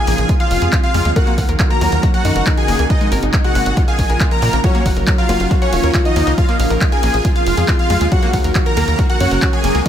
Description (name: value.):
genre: uplifting trance.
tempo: 138 BPM.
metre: 4/4.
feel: straight.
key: unclear.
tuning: A4 = 438 Hz.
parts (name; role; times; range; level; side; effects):
supersaw chords; melody; 0.0-9.9 s; Db4 to Bb5; -20 LUFS; equal; lush chorus, sidechain pumping, analog delay.
dark baby grand piano; second line; 0.0-9.9 s; Eb3 to Db5; -24 LUFS; left 2 dB; analog delay.
plucky unison lead; second line; 0.0-9.9 s; Db5 to Bb5; -27 LUFS; equal; analog chorus, sidechain pumping, analog delay.
lush unison pad; sustained chords; 0.0-9.9 s; C3 to Gb4; -24 LUFS; right 1 dB; chorus, vintage 12-bit sampler grit, sidechain pumping.
wide unison pluck; arpeggios; 0.0-9.8 s; Ab3 to Gb5; -25 LUFS; left 2 dB; sidechain pumping, analog delay.
tight sequencer bass; bass; 0.1-9.8 s; Eb1 to Bb2; -18 LUFS; equal; sidechain pumping.
punchy analog drum machine; drums; 0.1-9.9 s; handclaps, hi-hat, ride cymbal; -24 LUFS; equal; overdrive.
electronic kick drum; drums; 0.3-9.9 s; none; -16 LUFS; equal; overdrive.
room: light reverb, digital ambience.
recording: none.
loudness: -12 LUFS.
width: side -10 dB against mid.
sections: 0.0-9.9 A section.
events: none.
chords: 0.3 Fm; 1.2 Ebm; 2.0 Gb; 2.9 Abadd9; 3.8 Bbm; 4.6 Gb; 5.5 Ebm; 6.4 Bbm; 7.2 Fm; 8.1 Ebm; 9.0 Gb.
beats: 0.29 0.73 | 1.16 1.60 2.03 2.47 | 2.90 3.33 3.77 4.21 | 4.64 5.07 5.51 5.94 | 6.38 6.81 7.25 7.68 | 8.12 8.55 8.99 9.42 | 9.86.